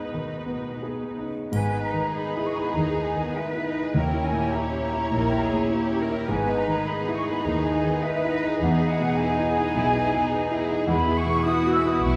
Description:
classical, romantic movement for piano and orchestra; 83-106 BPM; 4/4; rubato; G# minor; A4 = 438 Hz
clear concert grand piano; melody; 0.0-12.2 s; D#2 to G#5; -28 LUFS; equal
clear symphonic viola section; accompaniment; 0.0-12.2 s; D#4 to B4; -36 LUFS; equal
rich symphonic cello section; bass; 0.0-12.2 s; B2 to B4; -34 LUFS; equal
rich symphonic violin section; melody; 1.5-12.2 s; B4 to C#5; -39 LUFS; equal
clear symphonic violin section; second line; 1.5-12.2 s; G#3 to G#4; -37 LUFS; equal
flute section; second line; 1.5-12.2 s; D#5 to E6; -31 LUFS; equal
rich symphonic double bass section; bass; 1.5-12.2 s; G#1 to E2; -32 LUFS; equal
triangle; percussion; 1.5-2.7 s; -54 LUFS; equal
moderate scoring stage reverb, RT60 2.0 s; dark, warm production; -25 LUFS; mono
0.0-1.5 A section; 1.5-12.2 B section
0.0 G#m; 4.0 D#7b9; 6.3 G#m; 8.6 Emaj7; 10.9 E
0.12 0.83 | 1.53 2.15 2.76 3.37 | 3.96 4.55 5.14 5.73 | 6.31 6.88 7.45 8.03 | 8.61 9.19 9.76 10.33 | 10.89 11.46 12.05

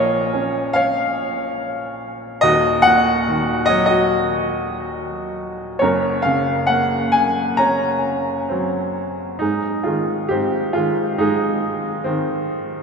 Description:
classical, lyrical solo piano; 65-73 BPM; 4/4; rubato; Ab major; A4 = 439 Hz
clear upright piano; solo; 0.0-12.8 s; Eb1 to Bb5; -17 LUFS; equal
wet cathedral reverb, RT60 4.9 s; in a vast, echoing space; -17 LUFS; side -5 dB against mid
0.0-9.4 A section; 9.4-12.8 B section
0.0 Bbm; 2.4 Ebm; 5.8 Gb; 9.4 Ab
0.77 1.59 | 2.44 3.28 4.12 4.97 | 5.82 6.69 7.58 8.51 | 9.41 10.30 11.19 12.06

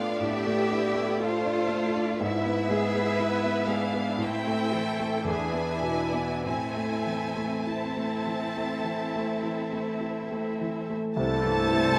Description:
classical; 49-61 BPM; 4/4; rubato; A minor; A4 = 440 Hz
rich chamber violin section; melody; 0.0-12.0 s; C5 to A5; -37 LUFS; equal
warm concert grand piano; melody; 0.0-12.0 s; C2 to F4; -32 LUFS; equal
rich chamber violin section; second line; 0.0-12.0 s; A4 to A5; -37 LUFS; equal
warm symphonic viola section; accompaniment; 0.0-12.0 s; C3 to F4; -37 LUFS; equal
bright chamber cello section; bass; 0.0-12.0 s; A3 to B4; -36 LUFS; equal
bright clarinet; second line; 11.2-12.0 s; A4; -35 LUFS; equal
mellow large flute ensemble; second line; 11.2-12.0 s; C5; -34 LUFS; equal
mellow French horn section; sustained chords; 11.2-12.0 s; Bb3 to E4; -34 LUFS; equal
mellow trombone section; sustained chords; 11.2-12.0 s; C3 to G3; -39 LUFS; equal
warm trumpet; stabs; 11.2-12.0 s; A4; -34 LUFS; equal
clear chamber double bass section; bass; 11.2-12.0 s; C2; -40 LUFS; equal
mellow tuba; bass; 11.2-12.0 s; C2; -38 LUFS; equal
wet scoring stage reverb, RT60 1.6 s; -28 LUFS; mono
0.0-11.2 A section
0.0 Bm7b5/A; 2.2 E/G#; 4.2 Am; 5.3 E7; 6.5 Am; 11.2 C7
0.19 1.22 | 2.21 3.20 4.22 5.29 | 6.46 7.67 8.87 10.02 | 11.18

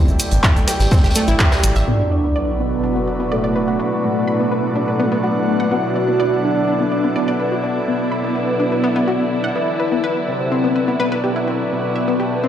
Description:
melodic techno; 125 BPM; 4/4; straight; B minor; A4 = 441 Hz
muted studio string section; sustained chords; 0.0-12.5 s; B2 to B4; -26 LUFS; right 1 dB; vintage 12-bit sampler grit, sidechain pumping, low-pass filter
analog pluck; arpeggios; 0.0-12.5 s; A3 to B5; -24 LUFS; left 2 dB; chorus, sidechain pumping, tape echo
overtone-sweeping drone; drone; 0.1-12.5 s; B2 to F#3; -28 LUFS; left 2 dB; chorus, built-in reverb, sidechain pumping
airy breathy pad; texture; 0.0-12.5 s; E4 to G5; -24 LUFS; right 1 dB; chorus, sidechain pumping
tight sequencer bass; bass; 0.1-1.8 s; A1; -17 LUFS; equal; tube saturation, sidechain pumping
tube shaker; percussion; 0.1-1.9 s; -30 LUFS; right 2 dB
deep house drum kit; drums; 0.2-1.7 s; handclaps, hi-hat, rim click; -20 LUFS; equal; overdrive, low-pass filter on hats, low-pass filter on snare
warm soul drum kit; drums; 0.2-1.9 s; hi-hat, snare drum, tambourine; -29 LUFS; equal; high-pass filter on hats, high-pass filter on snare, high-pass filter on perc, high-pass filter on room
electronic kick drum; drums; 0.4-1.5 s; -15 LUFS; equal
fat analog lead; melody; 1.9-12.5 s; A3 to F#4; -20 LUFS; equal; ensemble chorus, sidechain pumping, dub echo
sub drop; sound effects; 1.9-3.8 s; -22 LUFS; equal
moderate lush hall reverb, RT60 1.6 s, small room ambience; played on a big sound system in a bare room, large studio reverb; -16 LUFS; side -10 dB against mid
0.0-1.9 A section; 1.9-12.5 B section
band accent 1.4; impact 1.9-3.8; filter sweep on string section 1.9-12.5
0.0 A7(no3); 1.9 Bm; 9.6 Cmaj7
0.44 0.92 1.40 | 1.88 2.36 2.84 3.32 | 3.80 4.28 4.76 5.24 | 5.72 6.20 6.68 7.16 | 7.64 8.12 8.60 9.08 | 9.56 10.04 10.52 11.00 | 11.48 11.96 12.44

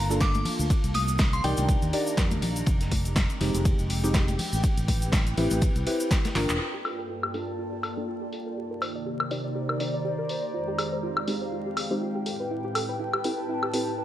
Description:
deep house; 122 BPM; 4/4; swing 56% on 16ths; A4 = 440 Hz
glassy synth bell; melody; 0.0-2.1 s; G5 to Eb6; -31 LUFS; equal; chorus, digital delay
hollow soft pad; sustained chords; 0.0-14.0 s; F2 to A5; -36 LUFS; equal; ensemble chorus, sidechain pumping
deep mellow chord stab; stabs; 0.0-14.0 s; Ab3 to D5; -32 LUFS; equal; chorus, vintage 12-bit sampler grit, sidechain pumping, digital delay
fingered electric bass; bass; 0.0-6.6 s; E1 to F2; -28 LUFS; equal; sidechain pumping
warbly tape-like pad; texture; 0.0-14.0 s; Eb3 to Bb5; -34 LUFS; equal; chorus, built-in reverb, sidechain pumping
vintage drum kit; drums; 0.1-14.0 s; hi-hat, ride cymbal, snare drum; -41 LUFS; equal; sidechain pumping on cymbals, high-pass filter on cymbals, low-pass filter on cymbals, sidechain pumping on hats, high-pass filter on hats, low-pass filter on hats, high-pass filter on snare, low-pass filter on snare, high-pass filter on room, low-pass filter on room
cabasa; percussion; 0.1-6.6 s; -40 LUFS; left 2 dB
electronic kick drum; drums; 0.2-6.2 s; -24 LUFS; equal; overdrive
punchy analog drum machine; drums; 0.2-13.8 s; crash cymbal, handclaps, hi-hat, snare drum, woodblock; -31 LUFS; left 1 dB; overdrive, low-pass filter on hats, low-pass filter on snare, low-pass filter on cymbals, low-pass filter on perc
congas; percussion; 0.4-6.5 s; -34 LUFS; left 2 dB
soft round pluck; arpeggios; 6.6-14.0 s; E4 to D5; -35 LUFS; right 2 dB; chorus, sidechain pumping, ping-pong delay
moderate echo chamber reverb, RT60 1.3 s, studio reverb; vinyl crackle; -24 LUFS; side -12 dB against mid
0.0-6.6 A section; 6.6-14.0 B section
drum fill 6.4; band accent 6.5; filter sweep on synth stab 6.6-14.0; filter sweep on synth arpeggio sound 6.6-14.0
0.0 Gm9; 0.7 Cm9; 2.7 Fm9; 4.4 Am9; 6.6 Gm9; 8.6 Cm9; 10.5 Fm9; 12.3 Am9
0.21 | 0.70 1.19 1.69 2.18 | 2.67 3.16 3.65 4.14 | 4.64 5.13 5.62 6.11 | 6.60 7.10 7.59 8.08 | 8.57 9.06 9.55 10.05 | 10.54 11.03 11.52 12.01 | 12.51 13.00 13.49 13.98

